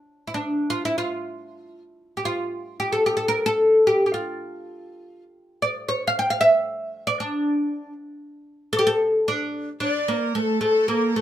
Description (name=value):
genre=arabic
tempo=74 BPM (dotted quarters)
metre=6/8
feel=straight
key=D maqam nahawand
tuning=A4 = 440 Hz
part: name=oud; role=melody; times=0.3-11.2 s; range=A3 to G5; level=-20 LUFS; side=equal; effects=none
part: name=breathy ney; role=second line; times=9.8-11.2 s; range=A4 to D5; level=-30 LUFS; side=left 3 dB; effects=none
part: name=clear studio violin section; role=second line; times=9.8-11.2 s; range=A4 to D5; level=-29 LUFS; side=left 1 dB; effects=none
room=light reverb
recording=minimal, uncompressed stereo recording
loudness=-20 LUFS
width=side -11 dB against mid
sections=0.0-9.8 A section; 9.8-11.2 B section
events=none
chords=none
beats=| 0.08 0.89 | 1.70 2.51 | 3.32 4.13 | 4.94 5.75 | 6.56 7.37 | 8.19 9.00 | 9.81 10.62